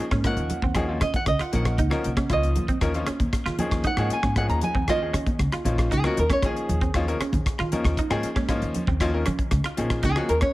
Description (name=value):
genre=electric jazz fusion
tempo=116 BPM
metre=4/4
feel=straight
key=Eb dorian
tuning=A4 = 440 Hz
part: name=bright grand piano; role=accompaniment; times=0.0-10.5 s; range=F3 to Bb4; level=-29 LUFS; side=left 2 dB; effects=none
part: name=semi-hollow electric guitar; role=stabs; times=0.1-10.5 s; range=C4 to F4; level=-33 LUFS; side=right 4 dB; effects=lush chorus, tape echo
part: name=upright bass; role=bass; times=0.1-10.4 s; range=Bb1 to Eb3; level=-26 LUFS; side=equal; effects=none
part: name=damped 70s drum kit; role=drums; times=0.1-10.5 s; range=hi-hat, kick drum, rim click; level=-27 LUFS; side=equal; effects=none
part: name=congas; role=percussion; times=0.1-10.5 s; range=none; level=-32 LUFS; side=right 1 dB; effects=none
part: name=nylon-string guitar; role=melody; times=0.3-10.5 s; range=Gb4 to Bb5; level=-27 LUFS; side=right 1 dB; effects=none
room=light reverb, small room reverb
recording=none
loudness=-21 LUFS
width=side -17 dB against mid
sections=0.0-10.5 A section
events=nylon-string guitar solo 0.0-10.5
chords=0.0 Eb9sus4